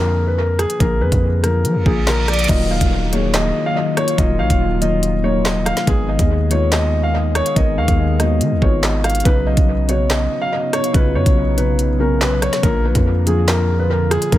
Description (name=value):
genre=hip hop, drill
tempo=142 BPM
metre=4/4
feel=half-time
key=Eb minor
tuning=A4 = 440 Hz
part: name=dark concert grand piano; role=melody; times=0.0-14.4 s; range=Ab4 to F5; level=-21 LUFS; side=equal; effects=dub echo
part: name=felt-muted upright piano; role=accompaniment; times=0.0-14.4 s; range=C#3 to Bb4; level=-22 LUFS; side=left 3 dB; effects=dub echo
part: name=hard-hitting 808-style bass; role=bass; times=0.0-14.4 s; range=Eb1 to F3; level=-18 LUFS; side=equal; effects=none
part: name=drill drum kit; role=drums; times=0.6-14.4 s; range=crash cymbal, handclaps, hi-hat, kick drum, rim click, snare drum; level=-20 LUFS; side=equal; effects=dub echo
part: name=reverse cymbal and downlifter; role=sound effects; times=1.8-5.9 s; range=none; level=-27 LUFS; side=right 3 dB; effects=none
part: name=dark analog pad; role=sustained chords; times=3.3-14.4 s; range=Bb2 to Ab4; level=-25 LUFS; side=left 1 dB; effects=chorus, phaser
room=little or no reverb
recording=echo-heavy mix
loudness=-14 LUFS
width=side -14 dB against mid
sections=0.0-2.5 A section; 2.5-14.4 B section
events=reverse cymbal 1.8-2.5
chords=0.0 Bb; 2.5 Ebmadd9; 5.9 Abm; 9.3 Badd9; 12.6 Bb